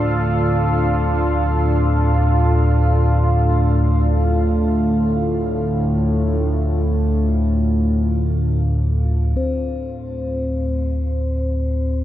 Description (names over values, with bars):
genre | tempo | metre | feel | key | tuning
dark ambient drone | free time | none | none | D minor | A4 = 440 Hz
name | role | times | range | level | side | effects
deep dark ambient pad | sustained chords | 0.0-9.4 s | D4 to F5 | -23 LUFS | equal | chorus, built-in reverb, shimmer reverb
analog drone | drone | 0.0-12.0 s | D2 to A2 | -17 LUFS | equal | chorus
bronze singing bowl | texture | 0.0-12.0 s | C4 to C5 | -30 LUFS | left 3 dB | none
room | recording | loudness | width
moderate huge ambient reverb, RT60 8.1 s | dreamy mix soaked in reverb, cassette tape | -16 LUFS | side -12 dB against mid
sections
0.0-9.4 A section; 9.4-12.0 B section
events
filter sweep on synth drone 9.4-12.0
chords
0.0 Dm; 9.4 D5